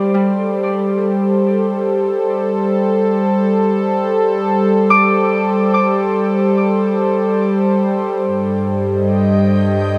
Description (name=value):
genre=ambient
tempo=free time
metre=none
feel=none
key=unclear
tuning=A4 = 442 Hz
part: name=warm analog pad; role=sustained chords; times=0.0-10.0 s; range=G3 to Eb5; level=-16 LUFS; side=equal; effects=chorus
part: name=Celtic harp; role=arpeggios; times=0.0-9.4 s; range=C5 to D6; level=-23 LUFS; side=equal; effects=tape echo
part: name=warm studio cello section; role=bass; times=8.3-10.0 s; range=G2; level=-21 LUFS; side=equal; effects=tube saturation
part: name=backwards swelling texture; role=texture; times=8.5-10.0 s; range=G5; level=-37 LUFS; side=equal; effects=built-in reverb
room=wet huge ambient reverb, RT60 7.8 s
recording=none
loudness=-16 LUFS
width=mono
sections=0.0-8.3 A section; 8.3-10.0 B section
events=filter sweep on analog synth pad 0.0-8.3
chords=0.0 Am/G; 8.3 Cm/G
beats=free time